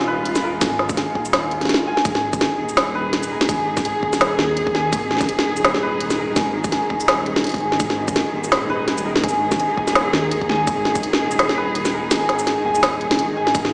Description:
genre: half-time drum and bass.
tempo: 167 BPM.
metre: 4/4.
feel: swing 56% on 16ths, half-time.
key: G# dorian.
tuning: A4 = 440 Hz.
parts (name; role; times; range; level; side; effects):
warm symphonic cello section; sustained chords; 0.0-13.7 s; G#2 to G#4; -26 LUFS; equal; sidechain pumping.
santur; arpeggios; 0.0-13.7 s; G#4 to G#5; -26 LUFS; equal; digital delay.
dark detuned saw bass; bass; 0.0-13.7 s; D#1 to D#2; -31 LUFS; equal; tube saturation.
organic electronic drum kit; drums; 0.0-13.7 s; hi-hat, shaker, snare drum; -22 LUFS; equal; none.
electronic kick drum; drums; 0.6-11.0, 13.5-13.6 s; none; -26 LUFS; equal; overdrive.
flickering grainy texture; texture; 13.6-13.7 s; E#4 to E#5; -40 LUFS; equal; none.
room: light reverb.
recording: played on a big sound system in a bare room, large studio reverb, small speaker sound.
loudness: -20 LUFS.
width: mono.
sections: 0.0-2.1 A section; 2.1-13.7 A section.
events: drop 0.0-2.1, 2.1-13.7; kick drops out 12.1-13.5.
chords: 0.0 G#5.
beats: 0.26 | 0.61 0.97 1.33 1.69 | 2.05 2.41 2.77 3.13 | 3.49 3.85 4.21 4.57 | 4.92 5.29 5.64 6.00 | 6.36 6.72 7.08 7.44 | 7.80 8.16 8.52 8.88 | 9.24 9.60 9.96 10.31 | 10.67 11.03 11.39 11.75 | 12.11 12.47 12.83 13.19 | 13.55.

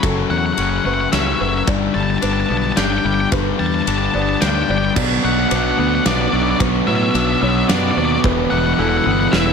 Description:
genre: post-rock.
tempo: 110 BPM.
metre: 3/4.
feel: straight.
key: unclear.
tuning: A4 = 440 Hz.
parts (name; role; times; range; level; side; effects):
icy glass pad; sustained chords; 0.0-9.5 s; F#3 to B4; -31 LUFS; left 3 dB; none.
felt-muted upright piano; arpeggios; 0.0-9.3 s; A4 to D5; -28 LUFS; right 3 dB; analog delay.
twangy electric guitar; arpeggios; 0.0-9.5 s; F#2 to E4; -26 LUFS; left 2 dB; analog delay.
sludgy distorted guitar; riff; 0.0-9.5 s; E2 to B3; -21 LUFS; left 13 dB; overdrive.
modern bright fingered electric bass; bass; 0.0-9.5 s; E1 to A2; -22 LUFS; equal; none.
big rock drum kit; drums; 0.0-9.5 s; crash cymbal, kick drum, ride cymbal, snare drum; -23 LUFS; equal; none.
octave-fuzz lead guitar; melody; 0.3-9.5 s; D5 to A5; -22 LUFS; left 2 dB; distortion, analog delay.
sludgy distorted guitar; riff; 5.0-9.5 s; E2 to B3; -20 LUFS; right 13 dB; overdrive.
room: light reverb, small room ambience.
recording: none.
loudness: -15 LUFS.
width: side -6 dB against mid.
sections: 0.0-9.5 A section.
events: build-up 0.0-9.5.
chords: 0.0 F#m; 1.7 G; 5.0 Bm; 8.2 Em.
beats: | 0.04 0.59 1.14 | 1.68 2.23 2.78 | 3.33 3.88 4.42 | 4.97 5.52 6.06 | 6.61 7.16 7.70 | 8.25 8.79 9.34.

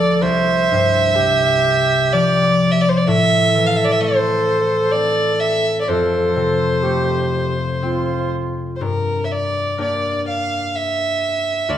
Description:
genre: celtic folk, Celtic slow air.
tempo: 63 BPM.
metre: 3/4.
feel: rubato.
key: G dorian.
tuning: A4 = 440 Hz.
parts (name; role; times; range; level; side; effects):
dark fiddle; melody; 0.0-11.8 s; Bb4 to F5; -18 LUFS; right 1 dB; none.
bright baroque flute; second line; 0.0-8.8 s; F4 to C5; -20 LUFS; right 2 dB; none.
concert harp; accompaniment; 0.0-11.8 s; C2 to G4; -21 LUFS; left 3 dB; none.
room: moderate recital hall reverb, RT60 1.6 s.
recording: none.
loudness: -15 LUFS.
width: side -10 dB against mid.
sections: 0.0-8.8 A section; 8.8-11.8 B section.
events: none.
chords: 0.2 Csus4; 3.1 Am; 5.9 F; 8.8 Gm.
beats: | 0.21 1.17 2.11 | 3.06 4.01 4.93 | 5.87 6.83 7.82 | 8.81 9.78 10.73 | 11.68.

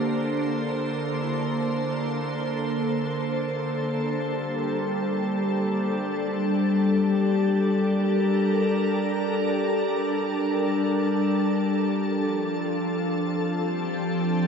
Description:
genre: ambient.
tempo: free time.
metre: none.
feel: none.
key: unclear.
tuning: A4 = 439 Hz.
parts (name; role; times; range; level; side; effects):
soft additive organ-like pad; sustained chords; 0.0-14.5 s; D3 to C5; -23 LUFS; equal; ensemble chorus, built-in reverb, shimmer reverb.
Celtic harp; arpeggios; 0.0-5.0 s; E4 to A4; -42 LUFS; left 1 dB; none.
room: wet cathedral reverb, RT60 6.5 s.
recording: dreamy mix soaked in reverb.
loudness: -23 LUFS.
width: side -6 dB against mid.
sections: 0.0-4.1 A section; 4.1-14.5 B section.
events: none.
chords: 0.0 Bbmaj7/D; 4.1 Gm; 12.0 F.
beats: free time.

